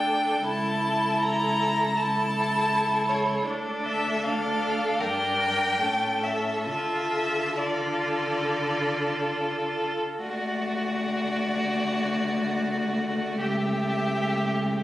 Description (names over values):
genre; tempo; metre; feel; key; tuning
classical, slow romantic movement for string quartet; 66-81 BPM; 4/4; rubato; D minor, D major from 10.2 s; A4 = 439 Hz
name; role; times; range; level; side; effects
rich violin; melody; 0.0-14.8 s; C#5 to Bb5; -28 LUFS; left 1 dB; none
rich violin; second line; 0.0-14.8 s; F#4 to Bb4; -29 LUFS; equal; none
rich viola; accompaniment; 0.0-14.8 s; A3 to F4; -30 LUFS; equal; none
rich cello; bass; 0.0-14.8 s; C#2 to D3; -31 LUFS; equal; none
room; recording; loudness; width
wet recital hall reverb, RT60 1.4 s; recorded on a phone in the room, studio reverb, compression; -24 LUFS; side -15 dB against mid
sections
0.0-10.2 A section; 10.2-14.8 B section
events
none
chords
0.5 A/C#; 3.5 Dm; 5.0 Gm; 5.8 A; 6.7 Dm; 10.2 D; 13.4 A7/C#